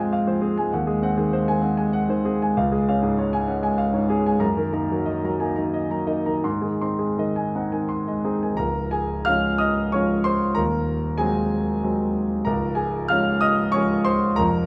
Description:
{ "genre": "classical, romantic character piece for solo piano", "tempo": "82-102 BPM", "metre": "3/4", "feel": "rubato", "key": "Db major", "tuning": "A4 = 439 Hz", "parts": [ { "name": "warm grand piano", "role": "solo", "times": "0.0-14.7 s", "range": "Db1 to F6", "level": "-23 LUFS", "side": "equal", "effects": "none" } ], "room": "wet recital hall reverb, RT60 1.4 s", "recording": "none", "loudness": "-23 LUFS", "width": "mono", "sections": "0.0-8.6 A section; 8.6-14.7 B section", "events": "none", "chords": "0.0 Fm/Ab; 0.7 Ab7/Eb; 2.5 Db; 4.4 Ebm/Gb; 6.5 Ab; 8.6 Db; 10.6 Ab7/Eb; 12.5 Db", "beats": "0.12 | 0.71 1.31 1.92 | 2.54 3.16 3.78 | 4.42 5.08 5.75 | 6.45 7.18 7.90 | 8.60 9.27 9.94 | 10.58 11.21 11.83 | 12.46 13.10 13.74 | 14.38" }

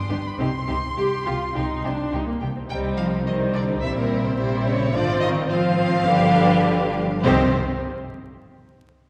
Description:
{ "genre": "quick classical-period movement for string orchestra", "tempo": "105 BPM", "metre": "4/4", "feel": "uneven beats, rubato", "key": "C minor", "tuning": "A4 = 443 Hz", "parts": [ { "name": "rich chamber violin section", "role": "melody", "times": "0.0-7.6 s", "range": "Bb4 to C6", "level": "-30 LUFS", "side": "equal", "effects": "none" }, { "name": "rich chamber violin section", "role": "second line", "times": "0.1-7.6 s", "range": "Eb4 to G5", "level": "-30 LUFS", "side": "equal", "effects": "none" }, { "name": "rich chamber viola section", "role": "accompaniment", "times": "0.1-7.6 s", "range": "D3 to G4", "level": "-28 LUFS", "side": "equal", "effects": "none" }, { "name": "clear chamber double bass section", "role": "bass", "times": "0.1-7.6 s", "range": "G1 to C2", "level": "-29 LUFS", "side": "equal", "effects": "none" }, { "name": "warm chamber cello section", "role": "bass", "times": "0.1-7.6 s", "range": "G2 to C4", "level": "-28 LUFS", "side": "equal", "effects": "none" } ], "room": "wet concert hall reverb, RT60 2.1 s", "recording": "heard from further back in the room, vinyl crackle", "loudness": "-22 LUFS", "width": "mono", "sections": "0.0-2.7 A section; 2.7-7.2 B section; 7.2-9.1 C section", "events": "none", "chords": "0.4 Cm; 3.8 C7/Bb; 4.9 Fm/Ab; 6.0 G7; 7.2 Cm", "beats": "| 0.39 0.97 1.55 2.12 | 2.69 3.25 3.81 4.37 | 4.92 5.47 6.05 6.63 | 7.24" }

